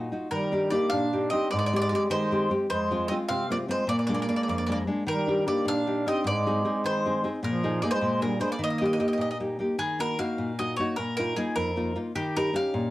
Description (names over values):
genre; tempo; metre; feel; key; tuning
italian folk, Italian serenade; 102 BPM (dotted quarters); 6/8; straight; Eb major, Eb minor from 9.8 s; A4 = 440 Hz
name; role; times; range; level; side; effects
nylon-string guitar; accompaniment; 0.0-12.9 s; F2 to Ab4; -28 LUFS; left 1 dB; none
bowl-back mandolin; melody; 0.3-12.9 s; G4 to F5; -30 LUFS; equal; cassette tape, plate reverb
mellow duduk; second line; 0.3-9.4 s; F3 to D4; -29 LUFS; right 2 dB; plate reverb
room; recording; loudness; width
moderate studio reverb, RT60 0.6 s; home recording on cassette; -24 LUFS; side -16 dB against mid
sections
0.3-9.8 A section; 9.8-12.9 B section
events
none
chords
0.3 Ebmaj7; 1.5 Abmaj7; 2.7 Fm; 3.9 Bb7; 5.1 Ebmaj7; 6.3 Ab; 7.4 Bb7sus4; 8.0 Bb7; 8.6 Eb; 9.8 Ebm; 11.0 Bbsus4; 12.2 Eb7